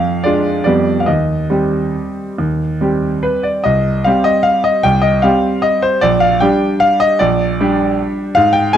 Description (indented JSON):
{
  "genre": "classical, piano waltz",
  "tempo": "133-162 BPM",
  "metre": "3/4",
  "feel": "rubato",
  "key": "C minor",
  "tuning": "A4 = 441 Hz",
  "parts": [
    { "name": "bright grand piano", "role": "solo", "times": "0.0-8.8 s", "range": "Bb1 to Ab5", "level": "-12 LUFS", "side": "equal", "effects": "none" }
  ],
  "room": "moderate recital hall reverb, RT60 1.7 s",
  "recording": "close, detailed microphones",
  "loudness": "-12 LUFS",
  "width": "side -10 dB against mid",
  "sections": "0.0-3.7 A section; 3.7-8.8 A section",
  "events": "none",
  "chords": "0.0 Ddim/F; 0.6 G7/F; 1.1 Cm/Eb; 3.7 Cm; 6.0 Gm/Bb"
}